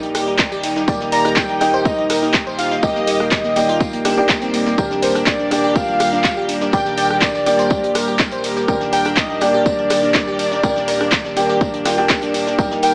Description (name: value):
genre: progressive house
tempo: 123 BPM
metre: 4/4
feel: straight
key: Eb major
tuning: A4 = 442 Hz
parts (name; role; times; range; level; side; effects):
- airy breathy pad; sustained chords; 0.0-12.9 s; G3 to Bb4; -27 LUFS; equal; chorus, vintage 12-bit sampler grit, sidechain pumping
- glassy wavetable pluck; arpeggios; 0.0-12.9 s; Bb3 to D5; -23 LUFS; equal; chorus, sidechain pumping, digital delay
- felt-muted upright piano; stabs; 0.0-12.9 s; Bb3 to G5; -20 LUFS; equal; sidechain pumping, digital delay
- tight sequencer bass; bass; 0.0-12.9 s; Eb1; -32 LUFS; equal; sidechain pumping
- modern studio drum kit; drums; 0.0-12.9 s; hi-hat, snare drum, tambourine; -29 LUFS; equal; sidechain pumping on hats, high-pass filter on hats, high-pass filter on snare, sidechain pumping on perc, high-pass filter on perc, high-pass filter on room
- downlifter; sound effects; 0.0-0.9 s; none; barely audible; none; none
- pop drum kit; drums; 0.1-12.9 s; handclaps, hi-hat, rim click; -20 LUFS; equal; overdrive
- electronic kick drum; drums; 0.4-12.7 s; none; -21 LUFS; equal; overdrive
- soft octave-layered synth lead; melody; 1.1-12.9 s; C5 to Bb5; -19 LUFS; equal; chorus, phaser, vintage 12-bit sampler grit, sidechain pumping
- warm studio violin section; second line; 1.1-12.9 s; C5 to Bb5; -26 LUFS; equal; sidechain pumping, digital delay
room: light reverb, small room ambience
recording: small speaker sound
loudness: -14 LUFS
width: side -34 dB against mid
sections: 0.0-12.9 A section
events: none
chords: 0.0 Ebmaj7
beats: 0.39 | 0.88 1.37 1.85 2.34 | 2.83 3.32 3.81 4.29 | 4.78 5.27 5.76 6.24 | 6.73 7.22 7.71 8.20 | 8.68 9.17 9.66 10.15 | 10.63 11.12 11.61 12.10 | 12.59